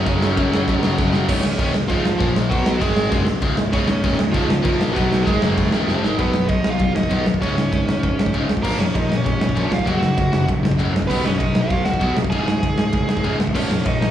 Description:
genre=punk rock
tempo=196 BPM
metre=4/4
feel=straight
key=Db mixolydian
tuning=A4 = 445 Hz
part: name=overdriven electric guitar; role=melody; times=0.0-14.1 s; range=F3 to Ab5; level=-24 LUFS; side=right 2 dB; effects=none
part: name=crunchy overdriven guitar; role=riff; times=0.0-14.1 s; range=Db2 to Cb4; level=-22 LUFS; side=left 6 dB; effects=none
part: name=tight distorted guitar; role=riff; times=0.0-1.3, 3.7-14.1 s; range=Db2 to Cb4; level=-28 LUFS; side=right 10 dB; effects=distortion, slapback echo
part: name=fuzz picked electric bass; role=bass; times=0.0-14.1 s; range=Db1 to Eb2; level=-24 LUFS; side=right 1 dB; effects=overdrive
part: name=big rock drum kit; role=drums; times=0.1-14.1 s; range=crash cymbal, kick drum, ride cymbal, snare drum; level=-21 LUFS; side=right 1 dB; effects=none
room=studio reverb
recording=live gig heard through the venue's PA, club reverb, studio ambience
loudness=-16 LUFS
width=side -11 dB against mid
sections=0.0-1.3 A section; 1.3-6.2 B section; 6.2-14.1 C section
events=drum fill 1.0-1.3, 5.9-6.2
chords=0.0 Gb5; 1.3 Db; 2.2 Bb5; 2.5 Cb5; 2.8 Ab5; 3.1 Db; 4.6 Bb5; 5.0 Cb5; 5.3 Ab5; 5.4 Gb5; 5.7 Ab69/Eb; 6.2 Cb; 7.4 Db5; 8.6 Bbm; 9.9 Gb5; 11.1 Cb; 12.3 Db5; 13.5 Bbm

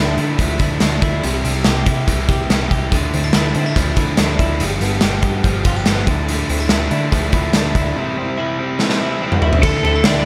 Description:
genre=jangly indie pop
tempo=143 BPM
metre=4/4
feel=straight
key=D dorian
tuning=A4 = 439 Hz
part: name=overdriven electric guitar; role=accompaniment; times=0.0-10.3 s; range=G2 to G4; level=-25 LUFS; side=equal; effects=none
part: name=direct-recorded clean electric guitar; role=arpeggios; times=0.0-10.3 s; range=G2 to G4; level=-26 LUFS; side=equal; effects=analog chorus, tape echo
part: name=vintage muted picked electric bass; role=bass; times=0.0-10.2 s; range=G1 to D3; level=-23 LUFS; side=equal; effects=none
part: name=raw garage drum kit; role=drums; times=0.2-10.1 s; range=crash cymbal, hi-hat, kick drum, ride cymbal, snare drum, toms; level=-20 LUFS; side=equal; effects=none
part: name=lead guitar through a small cranked amp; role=melody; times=9.6-10.3 s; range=A4 to D5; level=-20 LUFS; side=equal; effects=overdrive
room=small room ambience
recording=none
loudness=-17 LUFS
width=mono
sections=0.0-9.6 A section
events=drum fill 8.8-9.6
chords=0.0 Dmadd9; 1.2 C; 2.9 Dmadd9; 4.6 G7; 6.1 Dmadd9; 8.0 C; 9.6 Dmadd9

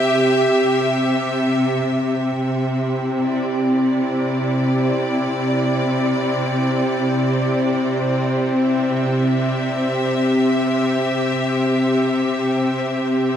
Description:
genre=ambient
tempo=free time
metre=none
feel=none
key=C major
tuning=A4 = 441 Hz
part: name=rich symphonic string section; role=sustained chords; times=0.0-13.4 s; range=C3 to E5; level=-17 LUFS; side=equal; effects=none
part: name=hand-pumped harmonium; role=drone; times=2.2-13.4 s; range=C3 to C4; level=-27 LUFS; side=right 2 dB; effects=none
room=wet plate reverb, RT60 3.6 s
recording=dreamy mix soaked in reverb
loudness=-17 LUFS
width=side -9 dB against mid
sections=0.0-2.2 A section; 2.2-13.4 B section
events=none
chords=0.0 C; 2.2 Cadd9

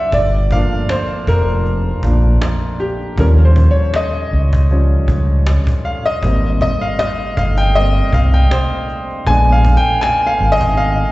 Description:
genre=lush 1970s-style soul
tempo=79 BPM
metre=4/4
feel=swing 54% on 16ths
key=unclear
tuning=A4 = 440 Hz
part: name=warm grand piano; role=accompaniment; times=0.0-11.1 s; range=F3 to Ab5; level=-17 LUFS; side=equal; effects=slapback echo
part: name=overdriven fingered electric bass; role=bass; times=0.1-11.0 s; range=F1 to Eb2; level=-13 LUFS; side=equal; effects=none
part: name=cajon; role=drums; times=0.1-10.9 s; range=none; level=-22 LUFS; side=equal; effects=slapback echo
room=small room reverb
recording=live gig heard through the venue's PA, recital hall reverb, nothing above 7.9 kHz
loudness=-12 LUFS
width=side -18 dB against mid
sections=0.0-11.1 A section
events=grand piano solo 0.0-11.1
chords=0.1 Gm7; 3.2 Eb9; 6.2 Abmaj9; 9.3 Bb7b9

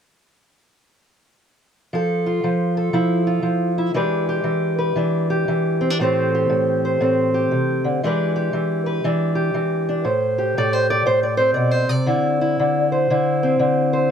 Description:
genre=acoustic country blues, solo or duo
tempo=118 BPM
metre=4/4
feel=swing 64% on 8ths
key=A minor from 10.1 s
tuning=A4 = 440 Hz
part: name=fingerpicked steel-string acoustic guitar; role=solo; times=1.9-14.1 s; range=A2 to D5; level=-17 LUFS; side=equal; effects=none
room=light reverb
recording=close, detailed microphones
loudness=-17 LUFS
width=side -8 dB against mid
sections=1.9-10.1 A section; 10.1-14.1 B section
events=none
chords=1.9 Fmaj7; 3.9 E7#9; 6.0 Am7; 8.0 E7#9; 10.1 Am9; 12.1 Dsus2

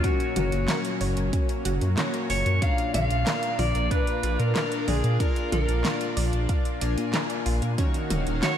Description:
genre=synthwave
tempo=93 BPM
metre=4/4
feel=straight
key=unclear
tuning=A4 = 440 Hz
part: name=clear alto saxophone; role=melody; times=0.0-8.6 s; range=Gb4 to F5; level=-31 LUFS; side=right 1 dB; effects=tape echo
part: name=soft synth bell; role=second line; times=0.0-8.6 s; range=Gb4 to F5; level=-36 LUFS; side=left 3 dB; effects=none
part: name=lush unison pad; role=sustained chords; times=0.0-8.6 s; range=Bb2 to F5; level=-32 LUFS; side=equal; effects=chorus, sidechain pumping
part: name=wide unison pluck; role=arpeggios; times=0.0-8.6 s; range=Db4 to F5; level=-36 LUFS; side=right 4 dB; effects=ping-pong delay
part: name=chorused polysynth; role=stabs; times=0.0-8.6 s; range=Bb2 to Bb5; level=-33 LUFS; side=left 4 dB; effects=ping-pong delay, slapback echo
part: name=dark detuned saw bass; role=bass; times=0.0-8.4 s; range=Eb1 to Bb2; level=-25 LUFS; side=equal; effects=none
part: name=electronic kick drum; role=drums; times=0.0-7.9 s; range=none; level=-25 LUFS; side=equal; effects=studio reverb
part: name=pop drum kit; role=drums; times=0.0-8.6 s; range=handclaps, hi-hat, snare drum, toms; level=-30 LUFS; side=equal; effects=studio reverb
room=light reverb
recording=none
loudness=-23 LUFS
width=side -9 dB against mid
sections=0.0-8.6 A section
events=none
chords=0.0 Gb; 2.6 Bb; 7.8 Ebm7

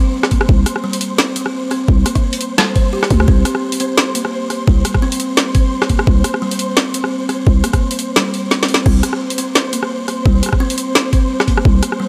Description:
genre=half-time drum and bass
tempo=172 BPM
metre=4/4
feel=swing 55% on 16ths, half-time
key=unclear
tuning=A4 = 439 Hz
part: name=buzzing kalimba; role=arpeggios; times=0.0-12.1 s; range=G3 to C5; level=-23 LUFS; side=equal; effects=tape echo
part: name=flickering grainy texture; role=texture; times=0.0-12.1 s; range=C5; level=-29 LUFS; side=equal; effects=built-in reverb
part: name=drum and bass drum kit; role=drums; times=0.2-12.0 s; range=crash cymbal, hi-hat, rim click, snare drum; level=-19 LUFS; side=equal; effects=overdrive
part: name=electronic kick drum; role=drums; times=0.3-11.7 s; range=none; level=-16 LUFS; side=equal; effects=overdrive
part: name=growling 808-style bass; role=bass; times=0.5-11.8 s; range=C2 to D2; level=-16 LUFS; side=equal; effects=none
room=digital ambience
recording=none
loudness=-15 LUFS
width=mono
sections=0.0-12.1 A section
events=kick drops out 8.2-8.9; drum fill 8.5-8.9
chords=0.0 C5

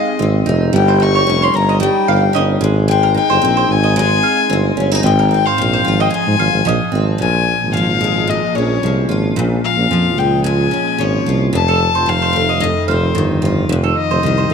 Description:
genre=acoustic pop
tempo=111 BPM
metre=4/4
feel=swing 55% on 16ths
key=unclear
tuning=A4 = 442 Hz
part: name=warm violin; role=melody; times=0.0-14.5 s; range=C5 to Db6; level=-18 LUFS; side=left 10 dB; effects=none
part: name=picked steel-string acoustic guitar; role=accompaniment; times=0.0-14.5 s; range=F2 to Bb4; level=-18 LUFS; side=right 1 dB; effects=double-tracked left and right
part: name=mandolin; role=arpeggios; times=0.0-7.1, 11.7-14.5 s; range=A4 to F5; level=-21 LUFS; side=right 10 dB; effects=none
part: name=warm tuba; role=bass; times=0.2-14.5 s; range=F1 to Ab2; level=-16 LUFS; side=right 1 dB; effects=none
room=moderate echo chamber reverb, RT60 2.0 s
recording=1960s-style stereo with parts hard left and right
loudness=-12 LUFS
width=side -6 dB against mid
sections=0.0-7.2 A section; 7.2-14.5 B section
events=none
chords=0.0 Fm7; 0.7 Eb7; 2.6 Abmaj7; 5.0 Fm7/Ab; 7.2 Bbm7; 11.5 F7

